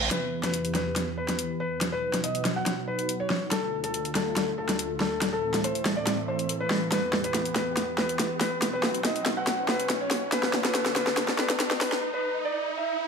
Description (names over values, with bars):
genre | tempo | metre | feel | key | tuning
heavy wobble dubstep | 141 BPM | 4/4 | half-time | unclear | A4 = 445 Hz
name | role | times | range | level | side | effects
felt-muted upright piano | melody | 0.0-13.0 s | A4 to F#5 | -30 LUFS | left 1 dB | vintage 12-bit sampler grit, dub echo
supersaw pad | sustained chords | 0.0-12.0 s | D2 to F#5 | -33 LUFS | equal | phaser, low-pass filter
reverse cymbal and riser | sound effects | 0.0-13.1 s | none | -35 LUFS | right 1 dB | none
dubstep drum kit | drums | 0.1-12.0 s | hi-hat, snare drum | -27 LUFS | equal | none
room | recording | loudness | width
moderate digital room reverb, RT60 1.0 s | high-pass filter | -25 LUFS | side -6 dB against mid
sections
0.1-13.1 A section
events
build-up 0.1-13.1; drum fill 0.1-12.0; riser 0.1-13.1; filter sweep on supersaw synth 0.1-13.1; break 12.0-13.1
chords
0.1 Em; 1.8 B; 3.5 Dm; 5.2 Am; 6.9 Em; 8.6 B; 10.3 Dm; 12.0 N.C.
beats
| 0.11 0.54 0.96 1.39 | 1.81 2.24 2.66 3.09 | 3.52 3.94 4.37 4.79 | 5.22 5.64 6.07 6.49 | 6.92 7.34 7.77 8.20 | 8.62 9.05 9.47 9.90 | 10.32 10.75 11.18 11.60 | 12.03 12.45 12.88